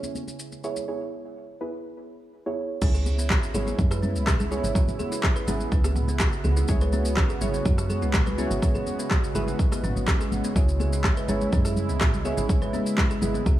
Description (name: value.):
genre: afro house.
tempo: 124 BPM.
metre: 4/4.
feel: straight.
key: C# minor.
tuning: A4 = 441 Hz.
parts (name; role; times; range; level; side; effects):
warm analog pad; sustained chords; 0.0-13.6 s; C#3 to F#4; -32 LUFS; right 1 dB; chorus, sidechain pumping.
deep mellow chord stab; stabs; 0.0-13.6 s; B3 to C#5; -33 LUFS; right 2 dB; chorus, sidechain pumping, tape echo.
deep house drum kit; drums; 0.0-13.6 s; crash cymbal, handclaps, rim click, shaker, toms; -31 LUFS; equal; overdrive.
congas; percussion; 0.0-13.6 s; none; -34 LUFS; left 2 dB; none.
kalimba; arpeggios; 2.8-13.6 s; B3 to B4; -34 LUFS; equal; sidechain pumping, tape echo.
woody FM bass; bass; 2.8-13.6 s; G#1 to F#2; -27 LUFS; equal; sidechain pumping.
electronic kick drum; drums; 2.8-13.6 s; none; -24 LUFS; equal; overdrive.
room: little or no reverb.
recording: small room ambience.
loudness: -22 LUFS.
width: side -14 dB against mid.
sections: 0.0-2.8 A section; 2.8-13.6 B section.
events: drop 2.8-13.6.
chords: 0.0 C#m7.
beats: 0.40 | 0.88 1.37 1.85 2.33 | 2.82 3.30 3.79 4.27 | 4.75 5.24 5.72 6.21 | 6.69 7.17 7.66 8.14 | 8.63 9.11 9.59 10.08 | 10.56 11.04 11.53 12.01 | 12.50 12.98 13.46.